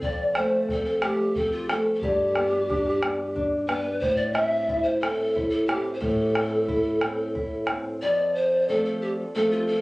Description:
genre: andean folk, Andean ensemble.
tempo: 90 BPM.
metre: 3/4.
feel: straight.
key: unclear.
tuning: A4 = 439 Hz.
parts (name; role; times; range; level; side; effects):
breathy mellow polished pan flute; melody; 0.0-9.8 s; F4 to E5; -24 LUFS; equal; analog delay.
nylon-string guitar; accompaniment; 0.0-9.8 s; F2 to E4; -27 LUFS; equal; none.
bombo; percussion; 0.0-7.9 s; none; -30 LUFS; equal; none.
room: moderate studio reverb, RT60 0.6 s.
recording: recorded on a phone in the room, club reverb.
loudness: -22 LUFS.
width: side -21 dB against mid.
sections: 0.0-8.0 A section; 8.0-9.8 A section.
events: none.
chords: 0.0 F; 2.0 G; 4.0 Am; 8.0 F.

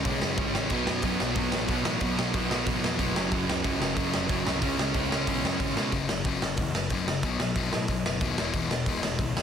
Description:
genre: punk rock.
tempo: 184 BPM.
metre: 4/4.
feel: straight.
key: unclear.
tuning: A4 = 435 Hz.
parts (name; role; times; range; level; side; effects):
overdriven electric guitar; riff; 0.0-5.9 s; F#2 to C#4; -31 LUFS; right 14 dB; none.
sludgy distorted guitar; riff; 0.0-9.4 s; E2 to C#4; -30 LUFS; left 7 dB; overdrive.
fuzz picked electric bass; bass; 0.0-9.4 s; E1 to B2; -34 LUFS; right 1 dB; overdrive.
raw garage drum kit; drums; 0.0-9.4 s; crash cymbal, hi-hat, kick drum, snare drum; -29 LUFS; equal; none.
room: light reverb.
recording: dense, heavily limited modern master.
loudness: -25 LUFS.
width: side -8 dB against mid.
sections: 0.0-5.9 A section; 5.9-9.4 B section.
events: none.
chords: 0.0 C#5; 0.7 B5; 3.2 F#5; 4.6 C#5; 5.9 F#5; 7.2 B; 8.4 E5.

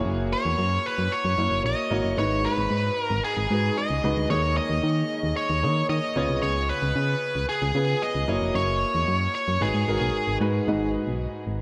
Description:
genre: 1980s-style pop.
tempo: 113 BPM.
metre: 4/4.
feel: straight.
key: G# minor.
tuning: A4 = 440 Hz.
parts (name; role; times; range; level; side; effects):
warm grand piano; accompaniment; 0.0-11.6 s; G#2 to C#5; -30 LUFS; equal; subtle chorus.
solid FM bass; bass; 0.0-11.6 s; E#1 to D#3; -29 LUFS; equal; none.
biting lead guitar; melody; 0.3-10.4 s; G#4 to D#5; -29 LUFS; equal; overdrive, diffuse ambient delay.
room: wet plate reverb, RT60 3.6 s.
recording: dreamy mix soaked in reverb.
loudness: -25 LUFS.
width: mono.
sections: 0.0-10.7 A section.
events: none.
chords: 0.0 F#7; 2.2 G#m7; 4.3 D#7sus4; 6.2 C#7; 8.3 F#7; 9.6 G#m7.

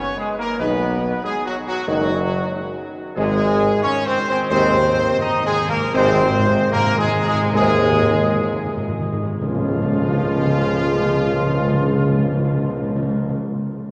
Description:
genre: classical, ceremonial fanfare.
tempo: 59-94 BPM.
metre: 4/4.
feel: straight.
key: Db major.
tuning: A4 = 439 Hz.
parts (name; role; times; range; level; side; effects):
dark trumpet section; melody; 0.0-13.4 s; F4 to Eb5; -26 LUFS; equal; none.
bright trombone section; sustained chords; 0.0-13.3 s; F3 to Eb4; -26 LUFS; equal; none.
dark French horn section; sustained chords; 0.6-13.4 s; C3 to Ab3; -29 LUFS; equal; none.
warm tuba; bass; 0.6-13.3 s; Gb1 to Eb2; -25 LUFS; equal; none.
timpani; percussion; 3.2-13.4 s; Ab2 to Db3; -25 LUFS; equal; none.
tam-tam; percussion; 9.4-13.4 s; none; -35 LUFS; equal; none.
room: wet cathedral reverb, RT60 5.0 s.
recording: worn, warbling old tape, cassette tape, warbly pitch drift.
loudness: -19 LUFS.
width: mono.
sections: 0.0-9.4 A section; 9.4-13.4 B section.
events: slowing down 1.9-9.4; timpani fill 3.2-9.4; band accent 9.4-10.4.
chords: 0.0 Cb6; 3.2 Ab; 9.4 Db.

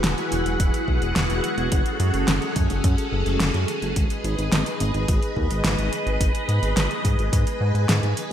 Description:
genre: synthwave.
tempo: 107 BPM.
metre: 4/4.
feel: straight.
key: G# phrygian.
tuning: A4 = 440 Hz.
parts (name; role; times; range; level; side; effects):
string machine, full ensemble; sustained chords; 0.0-8.3 s; C#4 to F#5; -25 LUFS; equal; ensemble chorus, sidechain pumping, shimmer reverb.
chorused synth bass; bass; 0.0-8.1 s; E1 to G#2; -23 LUFS; equal; none.
pop drum kit; drums; 0.0-8.3 s; hi-hat, snare drum; -26 LUFS; equal; gated reverb.
electronic kick drum; drums; 0.6-7.4 s; none; -23 LUFS; equal; none.
room: moderate plate reverb, RT60 2.4 s.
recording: bright 1980s-style digital production.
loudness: -20 LUFS.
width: side -10 dB against mid.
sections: 0.0-8.3 A section.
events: none.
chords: 0.0 Eadd9; 1.7 F#madd9; 4.0 G#m.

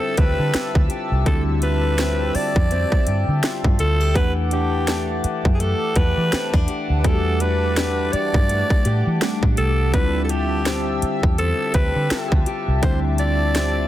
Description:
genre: contemporary R&B.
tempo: 83 BPM.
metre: 4/4.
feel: swing 58% on 16ths.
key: unclear.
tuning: A4 = 440 Hz.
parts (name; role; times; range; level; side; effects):
growling alto saxophone; melody; 0.0-13.9 s; G4 to D5; -25 LUFS; right 1 dB; tape echo.
mellow tine electric piano; accompaniment; 0.0-13.9 s; G3 to F#5; -29 LUFS; right 1 dB; medium stereo tremolo.
chorused pulse-width pad; sustained chords; 0.0-13.9 s; G4 to E6; -30 LUFS; equal; none.
fingerpicked acoustic archtop guitar; arpeggios; 0.0-13.9 s; D3 to G4; -28 LUFS; left 6 dB; tape echo.
vintage muted fingered electric bass; bass; 0.2-13.9 s; C2 to E3; -21 LUFS; equal; none.
trap drum kit; drums; 0.2-13.7 s; hi-hat, kick drum, snare drum; -20 LUFS; equal; none.
room: little or no reverb.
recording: dense, heavily limited modern master.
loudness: -17 LUFS.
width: side -13 dB against mid.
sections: 0.0-13.9 A section.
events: none.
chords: 0.0 Dm11; 4.2 Em11; 9.9 Dm11.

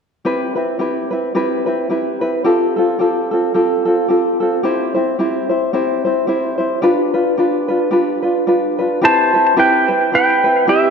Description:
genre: Hawaiian.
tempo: 110 BPM.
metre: 4/4.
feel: swing 58% on 8ths.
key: C major.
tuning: A4 = 441 Hz.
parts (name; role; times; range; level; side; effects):
tenor ukulele; accompaniment; 0.2-10.9 s; C4 to C5; -15 LUFS; equal; none.
pedal steel guitar; melody; 9.0-10.9 s; G4 to A5; -11 LUFS; equal; ping-pong delay.
room: wet lush hall reverb, RT60 2.6 s.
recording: dreamy mix soaked in reverb.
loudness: -14 LUFS.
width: side -6 dB against mid.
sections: 0.3-9.0 A section; 9.0-10.9 B section.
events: none.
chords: 0.3 Cmaj7; 2.4 Fadd9; 4.6 C; 6.8 G7; 9.0 Cmaj7.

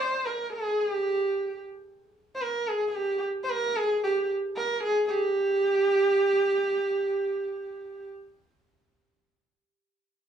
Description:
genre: indian classical.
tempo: 111 BPM.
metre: 4/4.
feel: straight.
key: unclear.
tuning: A4 = 443 Hz.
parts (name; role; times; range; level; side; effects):
warm sarangi; solo; 0.0-8.0 s; G4 to C5; -25 LUFS; right 2 dB; none.
room: little or no reverb.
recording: small room ambience.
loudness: -24 LUFS.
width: side -8 dB against mid.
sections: 0.0-5.1 A section; 5.1-7.3 B section.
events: none.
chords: none.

